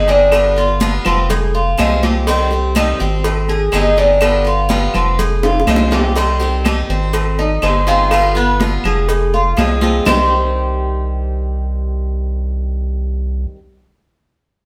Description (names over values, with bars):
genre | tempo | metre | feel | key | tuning
latin, Cuban son and guajira | 123 BPM | 4/4 | straight | C harmonic minor | A4 = 436 Hz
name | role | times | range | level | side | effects
picked swing-style acoustic guitar | accompaniment | 0.0-13.6 s | C3 to Ab4 | -23 LUFS | equal | none
Cuban tres | arpeggios | 0.0-13.5 s | B3 to C5 | -19 LUFS | equal | none
round analog bass | bass | 0.0-13.5 s | F1 to C2 | -20 LUFS | equal | none
agogo bells and timbales | percussion | 0.1-10.2 s | none | -27 LUFS | equal | none
congas | percussion | 0.1-10.2 s | none | -24 LUFS | equal | none
cowbell and bongos | percussion | 0.1-10.2 s | none | -26 LUFS | equal | none
claves | percussion | 0.3-10.2 s | none | -28 LUFS | equal | none
room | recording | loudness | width
wet stone room reverb, RT60 1.0 s | band playing live in one room | -15 LUFS | mono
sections
0.0-6.2 A section; 6.2-10.1 B section; 10.1-14.0 C section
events
drum fill 5.4-6.2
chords
0.3 G7; 1.3 Fm; 2.3 Cm; 3.2 Ab; 4.2 G7; 5.2 Fm; 6.2 Cm; 7.1 Ab; 8.1 G7; 9.1 Fm; 10.1 Cm